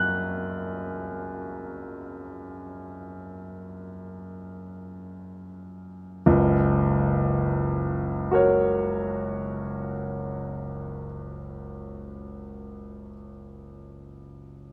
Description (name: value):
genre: classical, romantic nocturne for solo piano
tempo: free time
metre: none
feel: none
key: F# major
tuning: A4 = 440 Hz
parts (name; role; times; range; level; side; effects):
- clear grand piano; solo; 0.0-14.7 s; F#1 to F#6; -28 LUFS; equal; none
room: light reverb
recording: close, detailed microphones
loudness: -26 LUFS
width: mono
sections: 0.0-6.3 A section; 6.3-14.7 B section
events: slowing down 0.0-6.3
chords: 0.0 F#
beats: free time